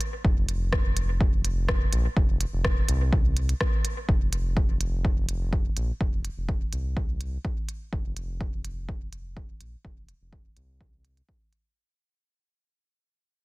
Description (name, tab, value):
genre	dub techno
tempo	125 BPM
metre	4/4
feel	straight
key	unclear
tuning	A4 = 441 Hz
part	deep house drum kit	drums	0.0-11.6 s	hi-hat, rim click	-33 LUFS	equal	soft clipping on snare, dub echo
part	round analog bass	bass	0.2-11.2 s	F1 to C2	-28 LUFS	equal	tube saturation, sidechain pumping
part	electronic kick drum	drums	0.2-11.4 s	none	-26 LUFS	equal	none
room	little or no reverb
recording	dense, heavily limited modern master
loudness	-24 LUFS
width	side -22 dB against mid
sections	0.0-4.1 A section; 4.1-11.8 B section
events	fade-out 4.1-11.8; filter sweep on analog synth bass 4.1-11.8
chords	none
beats	| 0.25 0.73 1.21 1.69 | 2.17 2.65 3.13 3.61 | 4.09 4.57 5.05 5.53 | 6.01 6.49 6.97 7.45 | 7.93 8.41 8.89 9.37 | 9.85 10.33 10.81 11.29